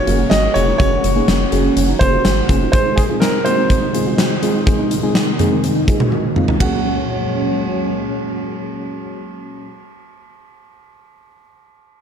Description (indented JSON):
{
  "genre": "synth-pop",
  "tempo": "124 BPM",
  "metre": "4/4",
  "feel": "straight",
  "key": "Gb lydian",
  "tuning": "A4 = 440 Hz",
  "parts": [
    { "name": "clear grand piano", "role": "melody", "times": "0.0-9.7 s", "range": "Gb4 to Eb5", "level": "-20 LUFS", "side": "right 2 dB", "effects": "low-pass filter, ping-pong delay" },
    { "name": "ensemble organ-string", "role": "sustained chords", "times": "0.0-9.7 s", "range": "Bb2 to Gb4", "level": "-22 LUFS", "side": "right 1 dB", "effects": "phaser, ensemble chorus, low-pass filter" },
    { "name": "mellow FM electric piano", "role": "accompaniment", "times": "0.1-9.7 s", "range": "Ab3 to Ab4", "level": "-22 LUFS", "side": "left 2 dB", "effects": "chorus, low-pass filter" },
    { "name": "soft round pluck", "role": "arpeggios", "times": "0.1-9.8 s", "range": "Gb3 to Gb4", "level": "-25 LUFS", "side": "right 5 dB", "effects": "chorus, low-pass filter, ping-pong delay" },
    { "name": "rubbery square bass", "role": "bass", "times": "0.1-2.7 s", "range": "F1 to Ab1", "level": "-19 LUFS", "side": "equal", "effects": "none" },
    { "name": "huge arena drum kit", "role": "drums", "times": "0.1-6.7 s", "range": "hi-hat, kick drum, ride cymbal, snare drum, toms", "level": "-18 LUFS", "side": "equal", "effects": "none" }
  ],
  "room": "moderate lush hall reverb, RT60 1.8 s, small room ambience",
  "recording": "dark, warm production",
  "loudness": "-14 LUFS",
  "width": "side -7 dB against mid",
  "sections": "0.0-6.6 A section; 6.6-10.5 B section",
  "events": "filter sweep 0.0-6.6; drum fill 6.1-6.6",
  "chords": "0.0 Gbadd9; 2.7 Ab; 6.6 Gbadd9",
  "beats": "0.31 | 0.80 1.28 1.76 2.25 | 2.73 3.22 3.70 4.18 | 4.67 5.15 5.64 6.12 | 6.60 7.09 7.57 8.06 | 8.54 9.02 9.51"
}